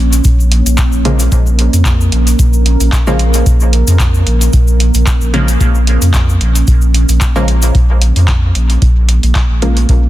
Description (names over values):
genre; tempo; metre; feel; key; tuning
dub techno; 112 BPM; 4/4; swing 54% on 16ths; Bb minor; A4 = 439 Hz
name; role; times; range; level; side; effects
deep dark ambient pad; sustained chords; 0.0-10.1 s; Bb3 to Bb4; -20 LUFS; right 2 dB; chorus, built-in reverb, sidechain pumping
warm sub bass; bass; 0.0-10.1 s; Bb1 to F2; -11 LUFS; equal; sidechain pumping
booming analog drum machine; drums; 0.1-10.0 s; handclaps, hi-hat; -21 LUFS; equal; dub echo
cabasa; percussion; 0.1-7.7 s; none; -22 LUFS; left 3 dB; none
electronic kick drum; drums; 0.2-10.0 s; none; -12 LUFS; equal; none
filtered dub chord stab; stabs; 1.1-9.8 s; Db3 to Bb3; -19 LUFS; equal; chorus, phaser, sidechain pumping, dub echo
room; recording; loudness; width
little or no reverb; dense, heavily limited modern master; -8 LUFS; side -14 dB against mid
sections
0.0-7.7 A section; 7.7-10.1 A section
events
none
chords
0.0 Bbm7